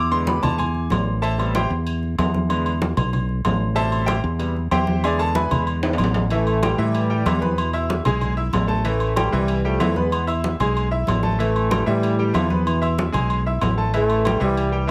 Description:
latin, salsa; 189 BPM; 4/4; straight; A minor; A4 = 439 Hz
bright grand piano; accompaniment; 0.0-14.9 s; B2 to E6; -28 LUFS; equal
fingered electric bass; bass; 0.0-14.9 s; A1 to A2; -25 LUFS; equal
agogo bells and timbales; percussion; 0.1-14.7 s; -29 LUFS; equal
congas; percussion; 0.1-14.9 s; -28 LUFS; equal
clear trombone section; melody; 6.3-14.9 s; B2 to B3; -26 LUFS; equal
light reverb; faint mains hum; -21 LUFS; mono
0.0-6.3 A section; 6.3-14.9 B section
grand piano solo 0.0-6.3; drum fill 5.8-6.3
0.0 E7; 1.2 Am7; 2.5 E7; 3.8 Am7; 5.0 E7; 6.3 A7(no3); 7.6 E; 8.9 Am7; 10.1 E; 11.4 Am7; 12.7 E; 13.9 Am7

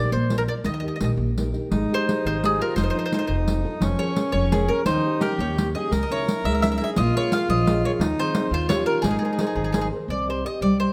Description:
italian folk, Italian serenade; 114 BPM (dotted quarters); 6/8; rubato; Ab major; A4 = 440 Hz
mandolin; melody; 0.0-10.9 s; Ab4 to F5; -29 LUFS; equal
nylon-string guitar; accompaniment; 0.0-10.9 s; C3 to Eb5; -29 LUFS; equal
upright bass; bass; 0.0-10.8 s; F1 to Eb2; -29 LUFS; equal
riq; percussion; 0.3-9.9 s; -30 LUFS; equal
accordion; second line; 1.7-9.9 s; Db4 to Bb4; -30 LUFS; equal
moderate recital hall reverb, RT60 1.7 s; -23 LUFS; mono
0.0-1.7 A section; 1.7-10.1 B section
0.1 Bb; 0.6 Eb; 1.7 Abmaj7; 2.8 F7; 3.8 Bbm7/F; 4.9 Eb7; 5.9 Dbmadd9; 7.0 Bbm7; 8.0 Ab/Eb; 8.5 Eb7; 9.0 Abadd9; 10.1 Cm

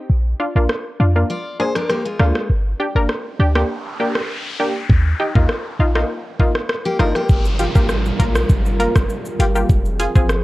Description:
dancehall; 100 BPM; 4/4; straight; A4 = 440 Hz
clean 808-style bass; bass; 0.1-10.4 s; F1 to F2; -17 LUFS; equal
wavetable chord stab; accompaniment; 0.4-10.3 s; Bb3 to Bb4; -22 LUFS; left 1 dB
afro-pop drum kit; drums; 0.7-10.4 s; hi-hat, kick drum, rim click, shaker; -18 LUFS; equal
picked steel-string acoustic guitar; arpeggios; 1.3-2.5, 6.9-7.4 s; Ab3 to D5; -22 LUFS; left 2 dB
noise sweep and downlifter; sound effects; 3.2-10.4 s; -29 LUFS; equal
hollow soft pad; sustained chords; 7.3-10.4 s; F3 to Bb4; -25 LUFS; right 2 dB; chorus
little or no reverb; worn, warbling old tape, cassette tape, warbly pitch drift; -16 LUFS; side -18 dB against mid
0.0-7.3 A section; 7.3-10.4 B section
noise sweep 3.2-7.3
0.1 Bb; 2.5 Gm; 4.9 Eb; 7.3 Gm7; 9.7 Fm

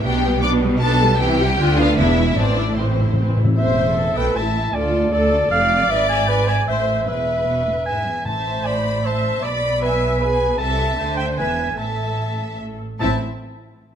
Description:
classical, dramatic, fast romantic movement for symphony orchestra; 153 BPM; 3/4; straight; A minor; A4 = 439 Hz
warm symphonic violin section; melody; 0.0-13.2 s; A4 to D6; -28 LUFS; left 4 dB
rich symphonic violin section; second line; 0.0-13.2 s; C4 to B5; -28 LUFS; left 3 dB
rich studio viola section; accompaniment; 0.0-13.2 s; E3 to E5; -24 LUFS; left 1 dB
rich symphonic cello section; bass; 0.0-13.2 s; D2 to D3; -24 LUFS; right 2 dB
rich symphonic double bass section; bass; 0.0-13.2 s; E1 to D2; -24 LUFS; right 2 dB
timpani; percussion; 2.4-3.5, 8.3-8.8, 13.0-13.2 s; A2; -23 LUFS; left 1 dB
mellow cor anglais; second line; 3.6-13.2 s; B4 to A5; -21 LUFS; right 1 dB
moderate recital hall reverb, RT60 1.8 s; close, detailed microphones; -16 LUFS; side -8 dB against mid
0.0-3.6 A section; 3.6-13.0 A section
timpani fill 2.4-3.6
0.0 G/B; 1.2 C; 1.6 Bdim/D; 2.0 E7; 2.4 Am; 3.6 Am/E; 4.7 Dm; 5.9 E7/G#; 6.7 Am; 7.1 E5; 7.9 E; 8.3 Am; 9.4 E7/B; 10.6 Am/C; 11.0 D5; 11.4 E; 11.8 A5; 13.0 Am

